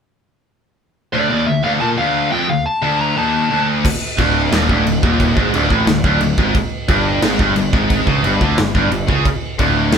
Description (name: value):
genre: heavy metal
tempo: 178 BPM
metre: 4/4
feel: straight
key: unclear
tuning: A4 = 439 Hz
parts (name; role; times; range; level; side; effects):
- high-gain lead guitar; melody; 1.1-3.6 s; D5 to Bb5; -19 LUFS; left 2 dB; distortion
- scooped high-gain guitar; riff; 1.1-10.0 s; D2 to D3; -19 LUFS; left 6 dB; distortion
- tight distorted guitar; riff; 1.1-10.0 s; D2 to D3; -19 LUFS; right 7 dB; distortion
- big rock drum kit; drums; 3.8-10.0 s; crash cymbal, kick drum, snare drum; -18 LUFS; equal; none
- overdriven picked electric bass; bass; 4.2-10.0 s; D1 to D2; -20 LUFS; equal; none
room: moderate large studio reverb, RT60 0.9 s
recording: band playing live in one room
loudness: -13 LUFS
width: side -7 dB against mid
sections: 1.1-3.8 A section; 3.8-10.0 B section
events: none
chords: 1.1 Dm; 3.8 D5; 6.6 G5; 9.3 N.C.